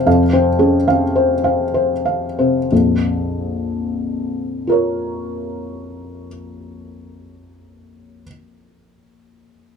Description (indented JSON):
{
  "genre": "neoclassical minimalist piano",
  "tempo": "60-78 BPM",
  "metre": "3/4",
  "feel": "rubato",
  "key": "Bb minor",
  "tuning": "A4 = 442 Hz",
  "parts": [
    { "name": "felt-muted upright piano", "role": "solo", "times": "0.0-9.8 s", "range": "Bb1 to F5", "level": "-16 LUFS", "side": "left 1 dB", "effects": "none" }
  ],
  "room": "moderate studio reverb, RT60 0.6 s",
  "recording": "dark, warm production",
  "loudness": "-15 LUFS",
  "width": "side -6 dB against mid",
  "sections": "0.0-2.7 A section; 2.7-8.6 B section",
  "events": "slowing down 0.0-2.7",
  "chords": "0.0 Fm; 2.7 Bbm"
}